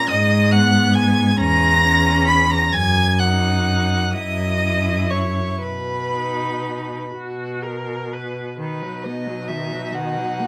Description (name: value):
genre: classical, slow romantic movement for string quartet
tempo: 38-47 BPM (dotted quarters)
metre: 6/8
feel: rubato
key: B major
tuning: A4 = 439 Hz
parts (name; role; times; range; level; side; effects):
- rich violin; melody; 0.0-10.5 s; B4 to B6; -24 LUFS; equal; none
- rich violin; second line; 0.0-10.5 s; D#4 to B5; -26 LUFS; equal; none
- rich viola; accompaniment; 0.0-10.5 s; D#3 to B4; -29 LUFS; equal; none
- rich cello; bass; 0.1-10.5 s; E2 to B2; -23 LUFS; equal; none
room: light reverb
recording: none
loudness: -19 LUFS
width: mono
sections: 0.0-8.6 A section; 8.6-10.5 B section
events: none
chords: 0.1 G#m; 1.4 C#m/E; 2.7 D#madd11/F#; 4.1 C#madd9; 5.6 B; 9.9 D#m/B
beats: | 0.09 1.38 | 2.73 4.13 | 5.62 7.13 | 8.60 9.95